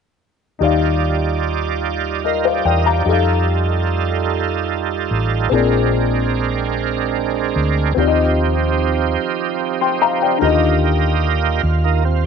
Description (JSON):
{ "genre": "slow gospel", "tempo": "49 BPM (dotted quarters)", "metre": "6/8", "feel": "straight", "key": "Eb major", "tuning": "A4 = 440 Hz", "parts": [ { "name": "warm grand piano", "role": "accompaniment", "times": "0.6-12.3 s", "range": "Bb2 to C6", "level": "-20 LUFS", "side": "left 11 dB", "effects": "none" }, { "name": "bright tonewheel organ", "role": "sustained chords", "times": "0.6-12.2 s", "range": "F3 to Bb5", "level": "-20 LUFS", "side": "right 13 dB", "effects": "slow rotary speaker, overdrive, chorus vibrato" }, { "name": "hollow-body short-scale fingered electric bass", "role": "bass", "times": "0.6-12.3 s", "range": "A1 to F2", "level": "-19 LUFS", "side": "equal", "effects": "none" } ], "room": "light reverb, small room ambience", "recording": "1960s-style stereo with parts hard left and right, nothing above 10.8 kHz", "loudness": "-15 LUFS", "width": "side -6 dB against mid", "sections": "0.6-10.4 A section; 10.4-12.3 B section", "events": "none", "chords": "0.6 Ebmaj9; 3.1 F9; 5.5 Bb9; 8.0 Eb69", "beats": "| 0.61 1.84 | 3.07 4.30 | 5.53 6.75 | 7.98 9.20 | 10.42 11.64" }